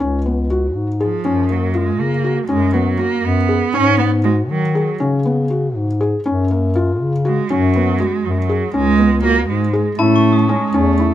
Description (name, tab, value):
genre	contemporary instrumental, chamber music in an uneven meter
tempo	241 BPM (eighths)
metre	5/8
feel	straight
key	Db mixolydian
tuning	A4 = 441 Hz
part	felt-muted upright piano	arpeggios	0.0-11.1 s	Bb3 to Ab4	-20 LUFS	left 2 dB	none
part	breathy bass clarinet	bass	0.0-11.1 s	Db2 to Eb3	-18 LUFS	left 1 dB	none
part	rich cello	melody	1.0-4.9, 7.3-11.1 s	F3 to Db4	-18 LUFS	right 7 dB	none
part	vibraphone with medium mallets	second line	10.0-11.1 s	C#4	-20 LUFS	left 5 dB	none
part	glockenspiel with hard plastic mallets	texture	10.0-11.1 s	A5 to Eb6	-22 LUFS	left 4 dB	none
room	light reverb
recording	close, detailed microphones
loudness	-14 LUFS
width	side -12 dB against mid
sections	0.0-10.0 A section; 10.0-11.1 B section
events	none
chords	0.0 Db7sus4; 1.3 Gbmaj7; 2.5 Cb5/Gb; 3.7 Abm7; 5.0 Db7sus4; 6.3 Gbmaj7; 7.5 Cb5/Gb; 8.7 Db5; 10.0 A